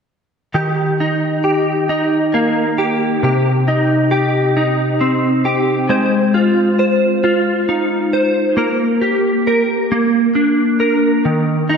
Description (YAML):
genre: pop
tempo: 45 BPM (dotted quarters)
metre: 6/8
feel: straight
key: Eb major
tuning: A4 = 440 Hz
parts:
  - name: direct-recorded clean electric guitar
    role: solo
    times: 0.5-11.8 s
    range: C3 to C5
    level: -13 LUFS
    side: equal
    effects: ensemble chorus
room: wet lush hall reverb, RT60 2.5 s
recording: dreamy mix soaked in reverb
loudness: -13 LUFS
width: side -6 dB against mid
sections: 0.5-11.2 A section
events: none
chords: 0.5 Eb; 3.2 Cm; 5.9 Ab6; 8.6 Gm/Bb; 9.9 Bb; 11.2 Eb5